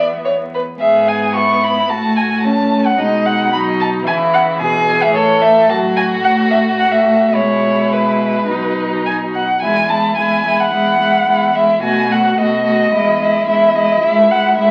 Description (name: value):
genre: quick classical-period movement for string quartet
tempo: 110 BPM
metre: 4/4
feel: rubato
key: E major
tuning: A4 = 444 Hz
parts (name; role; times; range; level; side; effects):
- warm violin; melody; 0.0-14.7 s; B4 to C#6; -17 LUFS; equal; none
- rich violin; second line; 0.0-14.7 s; C#4 to C#5; -20 LUFS; equal; none
- rich viola; accompaniment; 0.0-14.7 s; E3 to B3; -22 LUFS; equal; none
- warm cello; bass; 0.0-14.7 s; C#2 to C#3; -26 LUFS; equal; none
room: wet large studio reverb, RT60 0.9 s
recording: very old 78 rpm record, vinyl crackle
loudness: -14 LUFS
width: mono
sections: 0.0-9.6 A section; 9.6-14.7 B section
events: none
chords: 0.0 E5; 0.8 E/G#; 1.9 F#m/A; 3.0 B; 4.1 C#m; 5.2 F#m7/A; 7.3 Bsus4; 8.5 B; 9.6 E; 11.8 B7; 12.9 E; 14.0 C#m